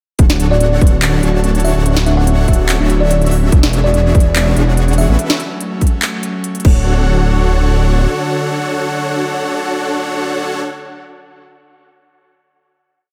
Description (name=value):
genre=future bass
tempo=144 BPM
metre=4/4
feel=half-time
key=D lydian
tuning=A4 = 440 Hz
part: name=airy breathy pad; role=sustained chords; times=0.2-10.6 s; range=D3 to C#5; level=-26 LUFS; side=equal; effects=chorus, sidechain pumping
part: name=thumb-piano-like synth pluck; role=arpeggios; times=0.2-7.0 s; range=B3 to C#5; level=-26 LUFS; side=equal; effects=none
part: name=supersaw chords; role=riff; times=0.2-10.6 s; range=C#4 to A5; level=-22 LUFS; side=equal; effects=sidechain pumping, diffuse ambient delay
part: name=detuned saw bass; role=bass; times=0.2-8.1 s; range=D1 to A1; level=-15 LUFS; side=equal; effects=chorus, sidechain pumping
part: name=electronic kick drum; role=drums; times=0.2-6.7 s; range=none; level=-12 LUFS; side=equal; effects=none
part: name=trap drum kit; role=drums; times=0.2-6.7 s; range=crash cymbal, handclaps, hi-hat, snare drum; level=-23 LUFS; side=equal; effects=none
part: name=kalimba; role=melody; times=0.5-5.2 s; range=B4 to F#5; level=-23 LUFS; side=equal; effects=vintage 12-bit sampler grit, sidechain pumping, delay
room=moderate lush hall reverb, RT60 1.9 s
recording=dreamy mix soaked in reverb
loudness=-14 LUFS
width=mono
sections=0.2-6.9 drop; 6.9-10.2 final hit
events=drop 0.2-6.9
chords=0.2 Dmaj7; 3.5 E13; 5.2 A69; 6.6 Dmaj7